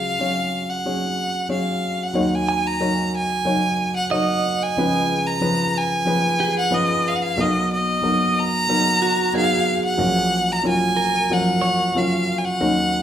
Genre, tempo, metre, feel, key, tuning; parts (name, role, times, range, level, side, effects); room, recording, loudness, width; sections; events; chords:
acoustic folk-pop ballad; 92 BPM; 4/4; straight; Eb minor; A4 = 435 Hz
clear violin; melody; 0.0-13.0 s; D#5 to Bb5; -21 LUFS; equal
felt-muted upright piano; accompaniment; 0.0-13.0 s; Bb1 to Db5; -22 LUFS; equal
clean electric guitar; arpeggios; 2.5-12.6 s; F#4 to Ab5; -26 LUFS; right 5 dB; tremolo
wet large studio reverb, RT60 0.9 s; band playing live in one room; -18 LUFS; side -10 dB against mid
0.0-2.2 A section; 2.2-13.0 B section
0.0 Dbsus4; 2.2 Ebm7; 4.8 Db7; 7.4 Bmaj7; 10.0 Gbmaj7/Bb